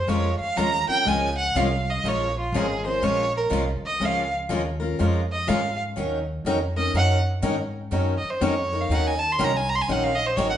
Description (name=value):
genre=acoustic string swing (jazz manouche)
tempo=122 BPM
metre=4/4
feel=swing 64% on 8ths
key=Bb minor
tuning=A4 = 439 Hz
part: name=rich violin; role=melody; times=0.0-10.6 s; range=F4 to C6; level=-24 LUFS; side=right 2 dB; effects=none
part: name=upright bass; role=bass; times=0.0-10.6 s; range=Ab1 to Ab2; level=-27 LUFS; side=equal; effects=none
part: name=picked steel-string acoustic guitar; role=accompaniment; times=0.1-10.5 s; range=Eb3 to Bb4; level=-26 LUFS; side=left 3 dB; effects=none
part: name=picked swing-style acoustic guitar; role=accompaniment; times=0.1-10.5 s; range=Eb3 to Bb4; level=-32 LUFS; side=right 6 dB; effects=none
room=wet large studio reverb, RT60 0.9 s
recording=band playing live in one room, nothing above 11.0 kHz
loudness=-21 LUFS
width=side -10 dB against mid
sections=0.0-10.6 A section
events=violin solo 0.0-10.6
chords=0.0 Bbm7; 6.0 Ebm7